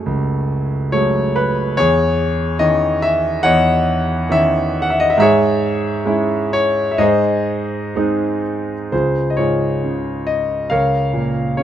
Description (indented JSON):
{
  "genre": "classical, lyrical solo piano",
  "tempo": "60-73 BPM",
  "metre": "4/4",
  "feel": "rubato",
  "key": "C# minor",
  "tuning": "A4 = 440 Hz",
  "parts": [
    { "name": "clear concert grand piano", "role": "solo", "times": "0.0-11.6 s", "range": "C#2 to G#5", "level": "-15 LUFS", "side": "equal", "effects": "none" }
  ],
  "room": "light reverb",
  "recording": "close, detailed microphones",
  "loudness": "-15 LUFS",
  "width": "side -10 dB against mid",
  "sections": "0.0-8.9 A section; 8.9-11.6 B section",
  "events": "none",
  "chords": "0.0 F#madd9; 1.8 C#madd9/E; 5.2 C#m/G#; 7.0 G#; 8.9 Db; 10.7 Bbm/Db"
}